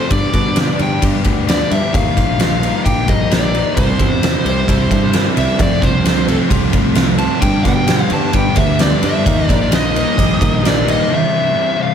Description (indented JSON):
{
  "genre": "quiet-loud alternative rock",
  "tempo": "131 BPM",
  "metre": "4/4",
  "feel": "straight",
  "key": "unclear",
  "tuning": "A4 = 440 Hz",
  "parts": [
    { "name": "dark smooth lead guitar", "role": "melody", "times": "0.0-11.9 s", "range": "A4 to A5", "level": "-20 LUFS", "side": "equal", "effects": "overdrive" },
    { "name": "twelve-string electric guitar", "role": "arpeggios", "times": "0.0-11.1 s", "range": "F2 to G4", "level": "-24 LUFS", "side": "right 1 dB", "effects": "slapback echo" },
    { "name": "thick fuzz guitar", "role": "riff", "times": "0.0-11.9 s", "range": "F2 to E4", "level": "-20 LUFS", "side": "left 9 dB", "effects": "distortion, slapback echo" },
    { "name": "overdriven picked electric bass", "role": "bass", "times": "0.1-11.0 s", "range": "Bb1 to B2", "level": "-20 LUFS", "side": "equal", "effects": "none" },
    { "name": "oversized low-tuned drum kit", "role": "drums", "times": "0.1-11.0 s", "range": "kick drum, ride cymbal, snare drum", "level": "-16 LUFS", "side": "equal", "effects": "none" },
    { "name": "thick fuzz guitar", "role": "riff", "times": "3.8-11.1 s", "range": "F2 to Eb4", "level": "-20 LUFS", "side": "right 10 dB", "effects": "distortion" }
  ],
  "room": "moderate recital hall reverb, RT60 1.4 s, studio ambience",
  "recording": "big arena sound",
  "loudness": "-12 LUFS",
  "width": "side -8 dB against mid",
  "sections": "0.0-11.1 A section",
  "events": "lead electric guitar solo 0.0-11.1",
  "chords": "0.1 G; 1.9 Ebadd9; 3.8 Cadd9; 5.6 F; 7.4 G; 9.3 Ebadd9; 11.1 C"
}